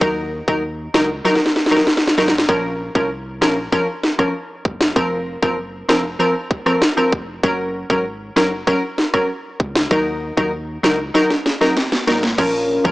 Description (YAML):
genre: dancehall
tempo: 97 BPM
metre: 4/4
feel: straight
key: Bb minor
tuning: A4 = 440 Hz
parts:
  - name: wavetable chord stab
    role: accompaniment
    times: 0.0-12.9 s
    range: F3 to Bb4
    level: -18 LUFS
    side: equal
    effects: none
  - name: sub bass with octave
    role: bass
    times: 0.0-12.9 s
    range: F1 to Eb2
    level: -32 LUFS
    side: equal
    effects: none
  - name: island pop drum kit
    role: drums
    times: 0.0-12.9 s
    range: crash cymbal, kick drum, rim click, snare drum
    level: -18 LUFS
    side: equal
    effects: overdrive
  - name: warm analog pad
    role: sustained chords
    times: 12.4-12.9 s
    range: Db4 to Bb4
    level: -19 LUFS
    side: left 1 dB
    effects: chorus, sidechain pumping
room: light reverb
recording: blown-out, overdriven recording, overdrive, small speaker sound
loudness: -16 LUFS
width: side -18 dB against mid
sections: 0.0-12.4 A section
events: drum fill 1.2-2.5, 11.1-12.4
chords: 0.0 Ebm; 2.5 Bbm; 5.0 Fsus4; 7.4 Gb; 9.9 Ebm; 12.4 Bbm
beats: | 0.01 0.63 1.25 1.87 | 2.49 3.11 3.72 4.34 | 4.96 5.58 6.20 6.82 | 7.43 8.05 8.67 9.29 | 9.91 10.53 11.15 11.77 | 12.38